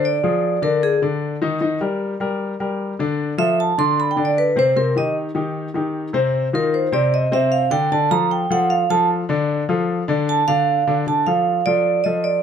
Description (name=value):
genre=jazz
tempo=152 BPM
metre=4/4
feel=straight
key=unclear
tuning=A4 = 442 Hz
part: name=vibraphone with medium hard mallets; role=melody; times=0.0-0.9, 3.4-12.4 s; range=Ab4 to C6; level=-18 LUFS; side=right 4 dB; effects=none
part: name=warm baby grand piano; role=accompaniment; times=0.0-12.4 s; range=C3 to Eb5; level=-20 LUFS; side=left 3 dB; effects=none
room=light reverb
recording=close, detailed microphones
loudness=-17 LUFS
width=side -8 dB against mid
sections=0.0-11.1 A section; 11.1-12.4 B section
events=vibraphone solo 0.0-11.1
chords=0.0 Ddim; 1.6 Eb; 3.2 Dm; 4.0 Gadd11 (rootless); 4.8 Cm; 6.3 F5; 7.9 Dm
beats=| 0.05 0.44 0.83 1.23 | 1.62 2.01 2.40 2.80 | 3.19 3.58 3.98 4.37 | 4.76 5.16 5.55 5.95 | 6.34 6.73 7.13 7.52 | 7.92 8.31 8.70 9.10 | 9.49 9.89 10.28 10.68 | 11.07 11.47 11.86 12.26